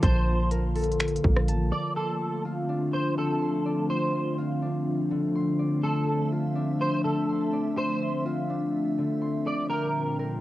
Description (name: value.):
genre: hip hop, atmospheric cloud-rap.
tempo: 124 BPM.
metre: 4/4.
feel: half-time.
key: D minor.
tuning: A4 = 440 Hz.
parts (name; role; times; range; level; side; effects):
electric guitar at the edge of break-up; melody; 0.0-10.2 s; A4 to D5; -31 LUFS; right 1 dB; ensemble chorus, cassette tape, analog delay.
glassy FM pad; sustained chords; 0.0-10.4 s; Bb2 to E5; -29 LUFS; equal; ensemble chorus, built-in reverb, sidechain pumping.
concert harp; arpeggios; 0.0-10.4 s; D3 to C6; -29 LUFS; left 2 dB; analog delay.
soft 808-style bass; bass; 0.0-1.7 s; A1 to Bb1; -25 LUFS; equal; none.
trap drum kit; drums; 0.0-1.6 s; finger snaps, hi-hat, kick drum, rim click; -25 LUFS; equal; cassette tape.
room: moderate small room reverb, RT60 0.5 s.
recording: home recording on cassette.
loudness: -24 LUFS.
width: side -15 dB against mid.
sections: 0.0-2.0 A section; 2.0-10.4 B section.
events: none.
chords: 0.0 Bbmaj7; 2.0 Dm7; 9.7 Gm7.